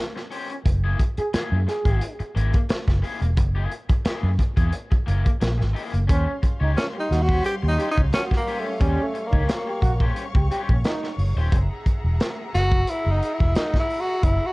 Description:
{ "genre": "funk", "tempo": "88 BPM", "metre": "4/4", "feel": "straight", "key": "Eb mixolydian", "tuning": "A4 = 442 Hz", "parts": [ { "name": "raw garage guitar", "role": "accompaniment", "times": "0.2-11.5 s", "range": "Bb3 to Db5", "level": "-33 LUFS", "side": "left 4 dB", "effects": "overdrive" }, { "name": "crunchy breakbeat drum kit", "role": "drums", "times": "0.2-14.4 s", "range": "hi-hat, kick drum, snare drum", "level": "-23 LUFS", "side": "equal", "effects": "none" }, { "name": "vintage muted fingered electric bass", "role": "bass", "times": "0.7-14.4 s", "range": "Eb1 to Gb2", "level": "-22 LUFS", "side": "equal", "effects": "none" }, { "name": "breathy trombone", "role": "second line", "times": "1.2-11.1 s", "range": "Db4 to Ab4", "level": "-30 LUFS", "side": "right 2 dB", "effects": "none" }, { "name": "warm studio string section", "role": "sustained chords", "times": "6.1-14.5 s", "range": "G3 to Db6", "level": "-35 LUFS", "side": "left 1 dB", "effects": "none" }, { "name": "breathy tenor saxophone", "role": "melody", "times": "6.8-14.5 s", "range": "G3 to G4", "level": "-25 LUFS", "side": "equal", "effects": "tape echo" } ], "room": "studio reverb", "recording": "cassette tape", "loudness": "-20 LUFS", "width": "side -24 dB against mid", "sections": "0.0-6.1 A section; 6.1-14.5 B section", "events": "tenor saxophone solo 6.1-14.5", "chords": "0.0 Eb6 (rootless); 0.7 Gb9; 6.1 Eb13; 11.5 Gb9", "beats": "| 0.66 1.34 2.02 2.69 | 3.37 4.05 4.73 5.41 | 6.09 6.77 7.45 8.13 | 8.81 9.48 10.16 10.84 | 11.52 12.20 12.88 13.55 | 14.23" }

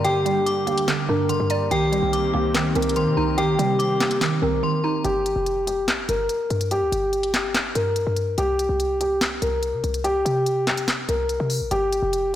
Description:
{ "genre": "hip hop, trap", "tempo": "144 BPM", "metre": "4/4", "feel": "half-time", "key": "C minor", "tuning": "A4 = 440 Hz", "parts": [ { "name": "felt-muted upright piano", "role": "melody", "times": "0.0-12.3 s", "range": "G4 to Bb4", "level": "-23 LUFS", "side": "left 1 dB", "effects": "low-pass filter" }, { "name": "metallic FM bell", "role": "second line", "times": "0.0-5.0 s", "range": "G5 to D6", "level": "-28 LUFS", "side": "left 3 dB", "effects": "chorus, tape echo" }, { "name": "mallet-like synth pluck", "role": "accompaniment", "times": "0.0-5.0 s", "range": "D3 to D5", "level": "-24 LUFS", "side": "right 5 dB", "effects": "chorus, low-pass filter" }, { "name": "warm analog pad", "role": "sustained chords", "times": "0.0-5.0 s", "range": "D3 to G4", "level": "-30 LUFS", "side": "left 2 dB", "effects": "chorus" }, { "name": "short 808-style bass", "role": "bass", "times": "0.0-12.4 s", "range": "F1 to C3", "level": "-28 LUFS", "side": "equal", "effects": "tube saturation" }, { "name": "trap drum kit", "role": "drums", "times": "0.0-12.2 s", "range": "handclaps, hi-hat, snare drum", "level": "-26 LUFS", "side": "left 1 dB", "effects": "none" } ], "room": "moderate scoring stage reverb, RT60 1.5 s", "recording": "blown-out, overdriven recording, overdrive", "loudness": "-20 LUFS", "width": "side -11 dB against mid", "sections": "0.0-5.0 A section; 5.0-12.4 B section", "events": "drums muted 4.6-5.0", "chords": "0.0 Gm; 1.7 Cm7; 5.0 Gm; 8.4 C5; 11.7 N.C.", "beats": "| 0.05 0.46 0.88 1.30 | 1.71 2.13 2.55 2.96 | 3.38 3.80 4.21 4.63 | 5.05 5.46 5.88 6.30 | 6.71 7.13 7.55 7.96 | 8.38 8.80 9.21 9.63 | 10.05 10.46 10.88 11.30 | 11.71 12.13" }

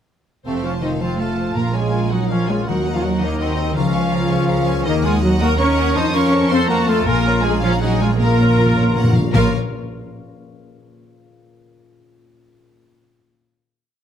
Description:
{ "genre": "cinematic, heroic adventure film score", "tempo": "108 BPM (dotted quarters)", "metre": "12/8", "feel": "straight", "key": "Bb minor", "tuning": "A4 = 440 Hz", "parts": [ { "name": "rich symphonic violin section", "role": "melody", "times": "0.5-9.5 s", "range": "Bb4 to Eb6", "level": "-26 LUFS", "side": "equal", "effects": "none" }, { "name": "bright symphonic violin section", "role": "second line", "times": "0.5-9.6 s", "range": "A4 to Eb6", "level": "-29 LUFS", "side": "left 1 dB", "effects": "none" }, { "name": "clear symphonic viola section", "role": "accompaniment", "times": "0.5-9.6 s", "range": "C4 to Eb5", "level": "-26 LUFS", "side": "right 2 dB", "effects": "none" }, { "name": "dark French horn section", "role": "sustained chords", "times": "0.5-9.5 s", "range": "C3 to Eb4", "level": "-23 LUFS", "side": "left 4 dB", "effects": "none" }, { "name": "concert harp", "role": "arpeggios", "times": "0.5-11.6 s", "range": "Bb2 to F5", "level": "-26 LUFS", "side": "left 7 dB", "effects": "none" }, { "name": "warm trumpet section", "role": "stabs", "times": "0.5-9.5 s", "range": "A3 to C5", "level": "-26 LUFS", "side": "equal", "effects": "none" }, { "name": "clear studio double bass section", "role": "bass", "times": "0.5-9.5 s", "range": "F1 to F2", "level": "-21 LUFS", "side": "right 3 dB", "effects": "none" }, { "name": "rich symphonic cello section", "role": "bass", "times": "0.5-9.5 s", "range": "C3 to Eb4", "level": "-22 LUFS", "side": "right 2 dB", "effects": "none" }, { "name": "timpani", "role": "percussion", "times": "1.6-2.1, 8.2-9.5 s", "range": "Bb2", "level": "-21 LUFS", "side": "left 1 dB", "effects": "none" } ], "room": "moderate recital hall reverb, RT60 1.4 s", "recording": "none", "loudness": "-15 LUFS", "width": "side -9 dB against mid", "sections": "0.5-9.3 theme; 9.3-11.6 final chord", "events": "timpani fill 8.2-9.3", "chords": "0.5 F; 1.6 Bbm7; 2.7 Ebm; 3.8 Bbm7/Db; 4.9 Ebm; 6.0 F; 7.1 Bbm7; 8.2 Bbm", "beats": "| 0.46 1.01 1.57 2.12 | 2.67 3.22 3.76 4.31 | 4.86 5.41 5.96 6.51 | 7.07 7.63 8.20 8.77 | 9.33 9.89 10.44 11.00" }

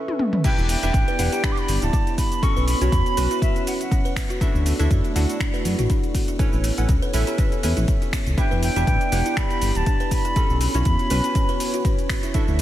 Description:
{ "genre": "afro house", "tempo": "121 BPM", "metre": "4/4", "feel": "swing 55% on 16ths", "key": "E dorian", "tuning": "A4 = 440 Hz", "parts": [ { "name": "dark analog pad", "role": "sustained chords", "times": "0.0-12.6 s", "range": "A3 to E5", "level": "-31 LUFS", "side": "equal", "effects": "chorus, sidechain pumping" }, { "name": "deep house drum kit", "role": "drums", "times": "0.1-12.6 s", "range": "cabasa, crash cymbal, finger snaps, hi-hat, toms", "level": "-29 LUFS", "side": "left 1 dB", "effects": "overdrive" }, { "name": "silver concert flute", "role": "melody", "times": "0.4-4.1, 8.4-12.1 s", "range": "E5 to D6", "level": "-27 LUFS", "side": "right 1 dB", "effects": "vintage 12-bit sampler grit, analog delay" }, { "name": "warm analog keys", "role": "stabs", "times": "0.4-12.6 s", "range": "C#4 to F#5", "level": "-30 LUFS", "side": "right 2 dB", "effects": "chorus, sidechain pumping, analog delay" }, { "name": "electronic kick drum", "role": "drums", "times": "0.4-12.5 s", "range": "none", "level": "-22 LUFS", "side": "equal", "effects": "none" }, { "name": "buzzing kalimba", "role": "arpeggios", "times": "0.6-12.6 s", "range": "B3 to B4", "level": "-30 LUFS", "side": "equal", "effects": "sidechain pumping, analog delay" }, { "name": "smooth gliding synth bass", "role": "bass", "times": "0.6-12.6 s", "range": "D1 to F#2", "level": "-21 LUFS", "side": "equal", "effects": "sidechain pumping" } ], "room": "light reverb", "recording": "none", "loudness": "-19 LUFS", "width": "side -13 dB against mid", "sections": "0.4-12.6 A section", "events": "break 0.0-0.4; drum fill 0.1-0.4; drop 0.4-12.6", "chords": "0.4 Em7; 2.4 Bsus2; 4.4 Dadd9; 6.4 Aadd9; 8.4 Em7; 10.4 Bsus2", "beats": "| 0.45 0.94 1.44 1.93 | 2.43 2.92 3.42 3.92 | 4.41 4.91 5.40 5.90 | 6.40 6.89 7.39 7.88 | 8.38 8.88 9.37 9.87 | 10.36 10.86 11.35 11.85 | 12.35" }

